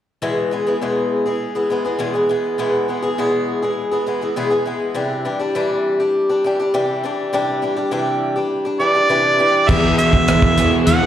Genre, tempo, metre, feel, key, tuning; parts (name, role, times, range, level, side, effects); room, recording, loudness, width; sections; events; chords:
folk rock and heartland rock; 102 BPM; 4/4; straight; A4 = 440 Hz
picked swing-style acoustic guitar; accompaniment; 0.2-11.1 s; E2 to G#4; -18 LUFS; left 1 dB; plate reverb, slapback echo
mellow harmonica; melody; 8.8-11.1 s; D5 to F#5; -15 LUFS; right 2 dB; plate reverb, slapback echo
crunchy overdriven guitar; riff; 9.7-11.1 s; E2 to B3; -19 LUFS; right 2 dB; slapback echo
fingered electric bass; bass; 9.7-11.1 s; E2; -17 LUFS; equal
damped 70s drum kit; drums; 9.7-11.0 s; crash cymbal, hi-hat, kick drum, rim click; -19 LUFS; equal
light reverb; live gig heard through the venue's PA, recital hall reverb; -16 LUFS; side -10 dB against mid
0.2-9.7 A section; 9.7-11.1 B section
0.2 E; 5.0 Cadd9; 9.7 E